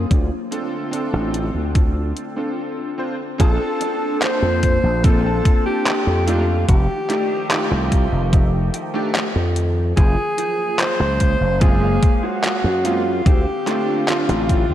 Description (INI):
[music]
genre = vaporwave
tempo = 73 BPM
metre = 4/4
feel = straight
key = Bb major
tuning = A4 = 439 Hz
[part]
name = warbly tape-like pad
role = sustained chords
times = 0.0-14.7 s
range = D3 to F5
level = -30 LUFS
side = left 2 dB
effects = chorus, built-in reverb
[part]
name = slap bass with an envelope filter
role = bass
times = 0.0-14.7 s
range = F1 to Gb2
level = -20 LUFS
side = equal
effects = tube saturation
[part]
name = mellow electric guitar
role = riff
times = 0.1-14.3 s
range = D4 to G5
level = -31 LUFS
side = right 2 dB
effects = ensemble chorus, low-pass filter, tape echo
[part]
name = detuned 8-bit digital drum machine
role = drums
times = 0.1-14.7 s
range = handclaps, hi-hat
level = -25 LUFS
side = equal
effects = overdrive
[part]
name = electronic kick drum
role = drums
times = 0.1-14.7 s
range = none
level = -15 LUFS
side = equal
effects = overdrive
[part]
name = clear electric grand piano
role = accompaniment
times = 0.5-14.7 s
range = Ab3 to A5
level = -25 LUFS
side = right 1 dB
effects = analog chorus, tape echo
[part]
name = clear alto saxophone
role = melody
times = 3.4-14.7 s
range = F4 to C5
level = -22 LUFS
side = equal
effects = tape echo
[sound]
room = moderate lush hall reverb, RT60 2.6 s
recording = dreamy mix soaked in reverb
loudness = -16 LUFS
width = side -12 dB against mid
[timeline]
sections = 0.0-3.4 A section; 3.4-14.7 B section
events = break 2.6-3.4; clean electric guitar fill 8.3-10.0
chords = 0.1 Dm7; 3.4 Bbmaj9; 6.3 F13; 10.0 Gbmaj9#11; 13.3 Dm7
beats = | 0.11 0.93 1.75 2.58 | 3.40 4.22 5.04 5.86 | 6.69 7.51 8.33 9.15 | 9.97 10.80 11.62 12.44 | 13.26 14.08